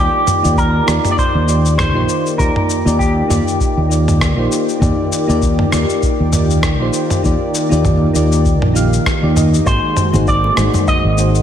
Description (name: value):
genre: sunset chillout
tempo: 99 BPM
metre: 4/4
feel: swing 56% on 16ths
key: Eb major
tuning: A4 = 440 Hz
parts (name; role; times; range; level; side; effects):
- electric guitar with an envelope filter; melody; 0.0-4.5, 9.7-11.4 s; G4 to Eb5; -18 LUFS; equal; tape echo, slapback echo
- soft electric-piano-like synth keys; accompaniment; 0.0-11.4 s; Bb3 to F5; -20 LUFS; equal; chorus, auto-pan, digital delay, slapback echo
- lush unison pad; sustained chords; 0.0-11.4 s; Eb3 to D5; -21 LUFS; left 1 dB; chorus
- fretless electric bass; bass; 0.0-11.4 s; Ab1 to Eb2; -15 LUFS; equal; none
- dusty soul sampler-style drum kit; drums; 0.3-11.4 s; rim click, shaker, toms; -20 LUFS; equal; small room ambience
- electronic kick drum; drums; 0.6-11.0 s; none; -19 LUFS; equal; small room ambience
- congas and bongos; percussion; 10.1-10.8 s; none; -27 LUFS; left 2 dB; none
room: moderate lush hall reverb, RT60 1.6 s, digital ambience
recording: big arena sound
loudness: -12 LUFS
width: side -9 dB against mid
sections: 0.0-11.4 A section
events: none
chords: 0.0 Ebmaj7; 9.7 Ab7